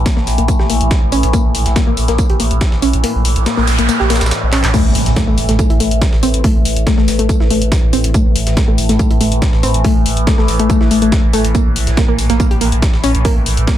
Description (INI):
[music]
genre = driving peak-time techno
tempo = 141 BPM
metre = 4/4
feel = straight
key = unclear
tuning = A4 = 440 Hz
[part]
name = warm sub bass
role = bass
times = 0.0-13.7 s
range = A1 to Bb1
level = -16 LUFS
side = equal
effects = overdrive, sidechain pumping, low-pass filter
[part]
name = overtone-sweeping drone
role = drone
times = 0.0-13.8 s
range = A2 to E3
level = -21 LUFS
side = right 1 dB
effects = chorus, built-in reverb, phaser, sidechain pumping
[part]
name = warbly dusty pluck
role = riff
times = 0.1-13.7 s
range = A3 to G4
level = -18 LUFS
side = left 2 dB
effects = chorus, tube saturation, sidechain pumping, ping-pong delay
[part]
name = breakbeat sampler-style drum kit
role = drums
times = 0.1-13.8 s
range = hi-hat, snare drum, tambourine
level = -26 LUFS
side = right 1 dB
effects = sidechain pumping on perc, high-pass filter on perc, sidechain pumping on hats, high-pass filter on hats, high-pass filter on snare, high-pass filter on room
[part]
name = electronic kick drum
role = drums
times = 0.1-13.8 s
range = none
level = -14 LUFS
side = equal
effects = overdrive
[part]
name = punchy analog drum machine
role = drums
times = 0.1-13.8 s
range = crash cymbal, handclaps, hi-hat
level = -22 LUFS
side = left 4 dB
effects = sidechain pumping on hats, sidechain pumping on cymbals
[part]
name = noise sweep and impact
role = sound effects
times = 3.3-6.4 s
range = none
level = -21 LUFS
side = right 1 dB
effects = none
[sound]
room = light reverb, digital ambience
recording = none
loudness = -11 LUFS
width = side -12 dB against mid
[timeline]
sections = 0.0-4.7 A section; 4.7-13.8 B section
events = kick drops out 3.0-4.7; noise sweep 3.3-4.7; drum fill 4.5; drop 4.7-13.8; impact 4.7-6.4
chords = 0.0 N.C.; 4.7 A5; 11.5 N.C.